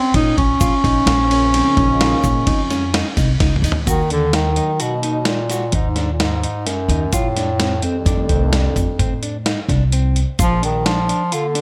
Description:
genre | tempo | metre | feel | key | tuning
progressive instrumental, band music in an uneven meter | 129 BPM | 7/4 | straight | Eb harmonic minor from 3.9 s | A4 = 440 Hz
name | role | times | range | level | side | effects
warm bass clarinet | melody | 0.0-11.6 s | F2 to Eb4 | -21 LUFS | equal | none
mellow electric guitar | arpeggios | 0.0-11.6 s | C4 to Gb4 | -29 LUFS | equal | slapback echo
upright bass | bass | 0.1-11.1 s | Bb1 to Bb2 | -22 LUFS | equal | none
dusty soul sampler-style drum kit | drums | 0.1-11.6 s | hi-hat, kick drum, ride cymbal, snare drum, toms | -23 LUFS | equal | none
tube shaker | percussion | 0.6-11.4 s | none | -34 LUFS | equal | none
dark analog pad | accompaniment | 1.2-11.5 s | Db3 to Eb4 | -31 LUFS | equal | chorus
room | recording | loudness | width
little or no reverb | none | -17 LUFS | mono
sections
0.0-3.9 A section; 3.9-11.6 B section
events
drum fill 3.4-3.9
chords
0.0 Bbmadd9; 3.9 Ebm; 7.1 F7; 10.4 Bb

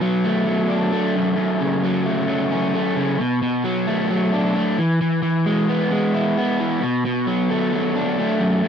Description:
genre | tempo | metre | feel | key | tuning
rock | 132 BPM | 4/4 | straight | B dorian | A4 = 440 Hz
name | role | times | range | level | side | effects
crunchy overdriven guitar | solo | 0.0-8.7 s | F#2 to E4 | -18 LUFS | equal | none
room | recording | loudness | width
moderate booth ambience, RT60 0.2 s | dry, close 1970s-style studio recording | -18 LUFS | side -7 dB against mid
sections
0.0-8.7 A section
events
none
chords
0.0 Bm7; 1.2 F#m; 3.2 Bm7; 4.8 E; 6.8 Bm7

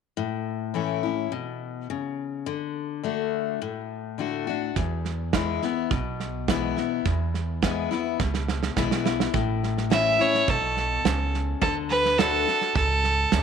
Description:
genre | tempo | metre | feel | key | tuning
honky-tonk and classic country | 105 BPM | 4/4 | straight | A major | A4 = 441 Hz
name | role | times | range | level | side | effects
picked steel-string acoustic guitar | accompaniment | 0.2-13.4 s | E2 to F#4 | -28 LUFS | left 10 dB | none
upright bass | bass | 4.8-13.4 s | A1 to E2 | -29 LUFS | right 2 dB | none
natural country drum kit | drums | 4.8-13.4 s | hi-hat, kick drum, snare drum | -27 LUFS | right 6 dB | none
bright fiddle | melody | 9.9-13.4 s | A4 to E5 | -22 LUFS | right 2 dB | none
room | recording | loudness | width
moderate spring reverb, RT60 2.1 s | 1960s-style stereo with parts hard left and right | -23 LUFS | side -7 dB against mid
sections
0.2-9.3 A section; 9.3-13.4 B section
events
drum fill 8.2-9.3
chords
0.2 A; 2.5 D; 4.8 E; 9.3 A; 11.6 D

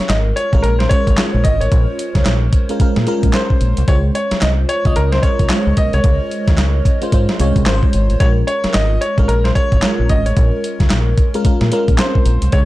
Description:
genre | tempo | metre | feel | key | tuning
R&B, new jack swing | 111 BPM | 4/4 | swing 61% on 16ths | unclear | A4 = 440 Hz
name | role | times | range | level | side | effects
warm concert grand piano | melody | 0.0-12.6 s | Bb4 to Eb5 | -21 LUFS | equal | none
FM electric piano with soft pad layer | accompaniment | 0.0-12.7 s | Ab3 to Eb5 | -21 LUFS | equal | chorus, phaser
deep dub fingered electric bass | bass | 0.0-12.7 s | Ab1 to Bb2 | -16 LUFS | equal | none
clean 12-bit digital drum machine | drums | 0.0-12.7 s | handclaps, hi-hat, kick drum, snare drum | -15 LUFS | equal | vintage 12-bit sampler grit
room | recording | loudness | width
digital ambience | dark, warm production | -12 LUFS | side -17 dB against mid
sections
0.0-12.7 A section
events
none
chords
0.0 Bbm7; 3.9 Dbmaj7; 8.2 Bbm7

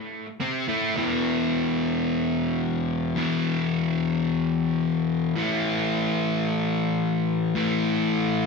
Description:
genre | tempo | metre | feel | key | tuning
rock | free time | none | none | unclear | A4 = 440 Hz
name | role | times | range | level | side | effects
sludgy distorted guitar | solo | 0.4-8.5 s | E2 to C4 | -22 LUFS | left 2 dB | overdrive, tape echo
room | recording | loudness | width
moderate club reverb, RT60 0.6 s | small room ambience | -22 LUFS | side -4 dB against mid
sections
1.0-8.5 A section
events
none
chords
0.0 Gsus4 (rootless); 1.0 E5; 5.4 A5

